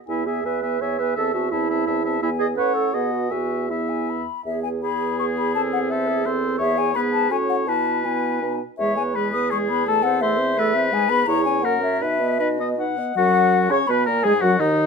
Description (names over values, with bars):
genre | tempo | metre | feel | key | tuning
quick classical-period movement for wind quintet | 155-172 BPM | 3/4 | rubato | E major, B major from 10.9 s | A4 = 437 Hz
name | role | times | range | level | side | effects
mellow hollow silver concert flute | melody | 0.1-14.9 s | D#5 to D#6 | -24 LUFS | left 8 dB | none
clear oboe | second line | 0.1-14.9 s | D#4 to F#5 | -26 LUFS | left 3 dB | none
dark French horn | accompaniment | 0.1-14.9 s | D#3 to E4 | -28 LUFS | equal | none
warm clarinet | accompaniment | 0.1-14.9 s | D#4 to D#5 | -26 LUFS | right 10 dB | none
mellow bassoon | bass | 0.1-14.9 s | D#2 to C#3 | -27 LUFS | right 2 dB | none
room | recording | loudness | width
moderate studio reverb, RT60 0.9 s | minimal, uncompressed stereo recording | -19 LUFS | side -5 dB against mid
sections
0.0-4.5 A section; 4.5-13.2 A section; 13.2-14.9 B section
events
none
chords
0.1 E; 1.2 Am/E; 2.2 E; 2.6 F#m/A; 2.9 B; 3.3 E; 5.5 Am/E; 6.6 E; 7.3 F#m/A; 7.7 E/B; 8.4 B; 8.8 E; 9.9 Am/E; 10.9 G#m; 11.3 C#m/E; 11.6 F#; 12.0 B; 13.2 B5/F#; 14.2 D#madd11